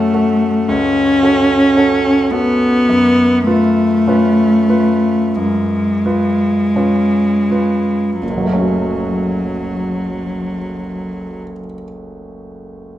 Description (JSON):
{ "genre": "classical, romantic duo for cello and grand piano", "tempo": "38-56 BPM", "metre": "4/4", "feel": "rubato", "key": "F# minor", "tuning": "A4 = 440 Hz", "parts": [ { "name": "rich cello", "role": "melody", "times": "0.0-11.4 s", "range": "F#3 to C#4", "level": "-14 LUFS", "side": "left 1 dB", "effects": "none" }, { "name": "bright grand piano", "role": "accompaniment", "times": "0.0-13.0 s", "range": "F#1 to B4", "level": "-19 LUFS", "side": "right 1 dB", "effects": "none" } ], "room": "wet recital hall reverb, RT60 1.5 s", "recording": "minimal, uncompressed stereo recording", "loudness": "-12 LUFS", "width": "side -13 dB against mid", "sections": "0.0-8.2 A section; 8.2-13.0 B section", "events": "slowing down 0.0-8.2", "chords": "0.0 F#m; 2.9 C#7/F#; 8.2 F#m" }